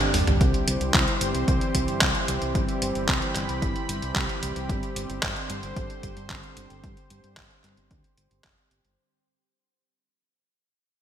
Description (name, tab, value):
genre	italo disco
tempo	112 BPM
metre	4/4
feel	straight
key	C major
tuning	A4 = 440 Hz
part	lush unison pad	sustained chords	0.0-8.9 s	C3 to B5	-31 LUFS	right 2 dB	chorus, vintage 12-bit sampler grit
part	mellow synth brass	stabs	0.0-4.4 s	G3 to C5	-34 LUFS	left 2 dB	chorus, ping-pong delay
part	detuned 8-bit digital drum machine	drums	0.0-9.0 s	handclaps, hi-hat, toms	-26 LUFS	equal	gated reverb
part	fingered electric bass	bass	0.1-9.0 s	F1 to G2	-31 LUFS	equal	tube saturation
part	electronic kick drum	drums	0.4-8.6 s	none	-28 LUFS	equal	none
room	moderate lush hall reverb, RT60 2.0 s, digital ambience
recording	bright 1980s-style digital production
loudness	-23 LUFS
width	side -10 dB against mid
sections	0.4-9.0 A section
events	drum fill 0.0-0.4; fade-out 0.4-9.0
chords	0.4 C; 4.7 Gsus4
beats	| 0.41 0.94 1.48 2.02 | 2.55 3.09 3.62 4.16 | 4.69 5.23 5.76 6.30 | 6.84 7.37 7.91 8.44